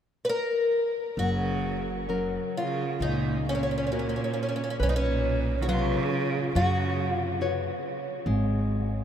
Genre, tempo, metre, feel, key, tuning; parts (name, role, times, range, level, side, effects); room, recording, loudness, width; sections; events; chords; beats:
fado-style ballad; 64-71 BPM; 4/4; rubato; F# major; A4 = 439 Hz
picked twelve-string acoustic guitar; melody; 0.2-7.4 s; C#4 to B4; -29 LUFS; left 1 dB; slapback echo
clear cello; second line; 1.2-7.4 s; F#2 to D#3; -32 LUFS; right 4 dB
nylon-string guitar; accompaniment; 1.2-9.0 s; C#3 to C#5; -31 LUFS; left 3 dB
upright bass; bass; 1.2-9.0 s; F#1 to F#2; -29 LUFS; equal
wet huge ambient reverb, RT60 8.3 s; in a vast, echoing space; -25 LUFS; side -9 dB against mid
0.0-1.2 A section; 1.2-9.0 B section
0.0 N.C.; 1.2 F#; 4.8 Bsus2; 8.3 N.C.
0.30 | 1.18 2.10 3.02 3.92 | 4.81 5.69 6.56 7.41 | 8.26